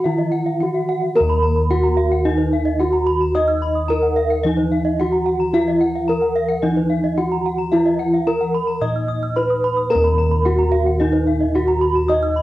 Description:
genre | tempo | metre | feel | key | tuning
Balinese gamelan | 110 BPM | 4/4 | straight | Eb pelog | A4 = 441 Hz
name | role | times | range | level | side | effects
gamelan-type bronze metallophone | melody | 0.0-12.4 s | Eb4 to Eb5 | -19 LUFS | equal | none
gamelan-type bronze metallophone | accompaniment | 0.0-12.4 s | Eb3 to Eb4 | -31 LUFS | left 6 dB | cassette tape
gamelan-type bronze metallophone | arpeggios | 0.0-12.4 s | Eb5 to Eb6 | -29 LUFS | left 6 dB | cassette tape
gamelan-type bossed gongs | bass | 0.1-12.4 s | Eb2 to Eb5 | -20 LUFS | equal | none
gamelan-type bronze metallophone | arpeggios | 0.2-12.4 s | Cb5 to Fb6+35c | -27 LUFS | right 7 dB | cassette tape
room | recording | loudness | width
wet studio reverb, RT60 0.6 s | home recording on cassette | -16 LUFS | side -15 dB against mid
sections
0.0-1.2 A section; 1.2-12.4 B section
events
none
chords
none

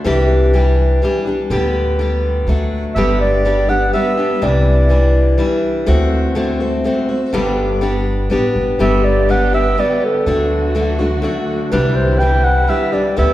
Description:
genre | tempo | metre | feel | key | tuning
acoustic folk duo or small band | 123 BPM | 3/4 | straight | G major | A4 = 439 Hz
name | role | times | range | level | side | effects
picked steel-string acoustic guitar | accompaniment | 0.0-13.3 s | G2 to G4 | -16 LUFS | left 1 dB | none
upright bass | bass | 0.1-13.3 s | G1 to D2 | -17 LUFS | equal | none
dark clarinet | melody | 2.9-5.6, 8.8-13.3 s | A4 to G5 | -18 LUFS | right 1 dB | none
dark chamber string section | sustained chords | 8.8-13.3 s | D3 to G4 | -26 LUFS | equal | none
room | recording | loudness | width
wet recital hall reverb, RT60 1.7 s | recorded in a church or concert hall | -13 LUFS | side -14 dB against mid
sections
0.0-8.8 A section; 8.8-13.3 A section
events
none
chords
0.1 Cadd9; 1.5 G/D; 2.5 D; 3.0 G; 4.4 Cadd9; 5.9 D7; 7.3 G; 10.3 D; 11.7 Cadd9

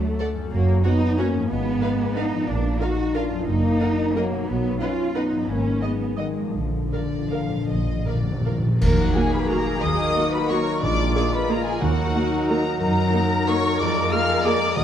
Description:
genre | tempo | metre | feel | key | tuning
classical, orchestral ballroom waltz | 151-197 BPM | 3/4 | rubato | Eb minor | A4 = 438 Hz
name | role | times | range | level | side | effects
warm French horn section | sustained chords | 0.0-14.6 s | D3 to Ab4 | -28 LUFS | left 3 dB | none
concert harp | arpeggios | 0.0-14.8 s | F2 to Bb5 | -30 LUFS | left 6 dB | none
warm studio cello section | bass | 0.0-14.8 s | F3 to Bb4 | -28 LUFS | right 2 dB | none
dark studio violin section | melody | 0.2-14.8 s | F5 to F6 | -30 LUFS | left 3 dB | none
warm chamber violin section | second line | 0.2-14.8 s | Gb4 to F5 | -32 LUFS | left 4 dB | none
warm studio viola section | accompaniment | 0.2-14.5 s | Bb3 to Eb5 | -30 LUFS | right 2 dB | none
warm studio double bass section | bass | 0.5-14.8 s | Gb1 to Gb2 | -26 LUFS | right 2 dB | none
cymbal swell, clash cymbals and concert bass drum | percussion | 6.6-9.5 s | none | -27 LUFS | equal | none
timpani | percussion | 6.6-8.7, 10.8-12.3, 14.8 s | Bb2 to Eb3 | -26 LUFS | equal | none
dark cor anglais | second line | 8.8-14.8 s | Bb4 | -33 LUFS | right 3 dB | none
warm clarinet | second line | 8.8-14.8 s | Eb4 to Gb4 | -31 LUFS | left 1 dB | none
warm bassoon | accompaniment | 8.8-14.8 s | Gb3 to Bb3 | -29 LUFS | right 1 dB | none
mellow hollow concert flute | second line | 9.0-14.8 s | Gb5 to F6 | -30 LUFS | equal | none
room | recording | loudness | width
wet scoring stage reverb, RT60 2.2 s | dark, warm production | -20 LUFS | side -10 dB against mid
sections
0.0-8.8 A section; 8.8-14.8 B section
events
timpani fill 6.6-8.8; band accent 8.8-9.1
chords
0.0 D; 0.5 Gb; 1.5 Fdim/Ab; 2.5 Bb; 3.5 Ebm/Gb; 4.5 B; 5.5 Abm7; 6.6 Bb; 8.8 Ebm; 10.8 Bb7; 11.8 Ebm; 12.8 Ebm/Gb; 13.8 Bb7/F

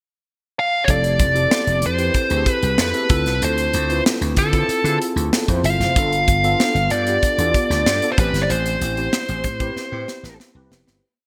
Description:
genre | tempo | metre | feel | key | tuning
polished 1980s jazz-funk pop | 95 BPM | 4/4 | straight | unclear | A4 = 440 Hz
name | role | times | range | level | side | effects
nasal lead guitar with a parked wah | melody | 0.6-10.4 s | A4 to F5 | -23 LUFS | equal | overdrive
tine electric piano | accompaniment | 0.9-11.1 s | B3 to C5 | -27 LUFS | equal | analog chorus
slap bass | bass | 0.9-11.0 s | F1 to D3 | -25 LUFS | equal | none
modern studio drum kit | drums | 0.9-11.0 s | hi-hat, kick drum, snare drum | -24 LUFS | equal | gated reverb
room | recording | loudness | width
moderate plate reverb, RT60 2.2 s | bright 1980s-style digital production | -19 LUFS | mono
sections
0.0-0.9 pickup bar; 0.9-11.0 verse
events
fade-out 8.5-11.0; drum fill 9.8-11.0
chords
0.0 N.C.; 0.9 Fmaj7; 6.0 G9; 8.2 Am7

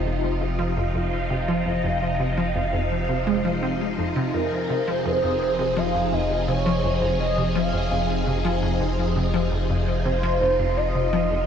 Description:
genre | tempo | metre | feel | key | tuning
ambient, sequencer-driven space music | 84 BPM | 4/4 | straight | F minor | A4 = 438 Hz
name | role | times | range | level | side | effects
phased string machine | sustained chords | 0.0-11.5 s | C3 to Ab4 | -25 LUFS | equal | ensemble chorus, phaser, shimmer reverb
round analog bass | bass | 0.0-11.5 s | F1 | -28 LUFS | equal | none
resonant blip pluck | riff | 0.1-11.4 s | F2 to C4 | -26 LUFS | left 1 dB | lush chorus, shimmer reverb, ping-pong delay
expressive synth lead | melody | 4.3-11.5 s | Bb4 to F5 | -25 LUFS | right 1 dB | analog chorus, shimmer reverb, ping-pong delay
room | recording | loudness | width
wet plate reverb, RT60 2.4 s | echo-heavy mix, cassette tape | -21 LUFS | side -8 dB against mid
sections
0.0-11.5 A section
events
none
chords
0.0 Fm7

